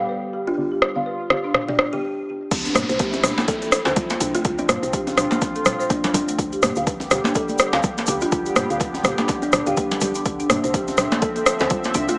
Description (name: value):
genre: afro house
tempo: 124 BPM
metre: 4/4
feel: swing 58% on 16ths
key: D dorian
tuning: A4 = 440 Hz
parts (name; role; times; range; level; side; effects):
- warm analog pad; sustained chords; 0.0-12.2 s; D3 to E5; -29 LUFS; equal; chorus, sidechain pumping
- folk marimba with medium mallets; arpeggios; 0.0-12.2 s; A3 to F5; -26 LUFS; equal; sidechain pumping, tape echo
- deep mellow chord stab; stabs; 0.0-2.0 s; D3 to D5; -33 LUFS; equal; chorus, sidechain pumping, tape echo
- kalimba; melody; 0.5-12.2 s; D4 to A4; -28 LUFS; equal; tape echo
- afro-pop drum kit; drums; 0.8-12.2 s; crash cymbal, hi-hat, rim click, toms; -21 LUFS; equal; overdrive
- woody FM bass; bass; 2.5-12.1 s; D1 to G2; -30 LUFS; equal; sidechain pumping
- electronic kick drum; drums; 2.5-12.1 s; none; -26 LUFS; equal; overdrive
- tube shaker; percussion; 2.5-12.2 s; none; -34 LUFS; equal; none
- downlifter; sound effects; 2.5-6.4 s; none; -30 LUFS; equal; none
- congas; percussion; 2.7-11.9 s; none; -27 LUFS; equal; none
- djembe; percussion; 3.0-11.9 s; none; -27 LUFS; equal; none
room: moderate lush hall reverb, RT60 1.7 s, small room ambience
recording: small speaker sound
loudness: -18 LUFS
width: side -27 dB against mid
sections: 0.0-2.5 A section; 2.5-12.2 B section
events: stop 2.0-2.5; drop 2.5-12.2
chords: 0.0 G/D; 2.5 Dm9; 6.4 G/D; 10.3 Dm9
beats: 0.09 | 0.58 1.06 1.54 2.03 | 2.51 3.00 3.48 3.96 | 4.45 4.93 5.42 5.90 | 6.38 6.87 7.35 7.83 | 8.32 8.80 9.29 9.77 | 10.25 10.74 11.22 11.71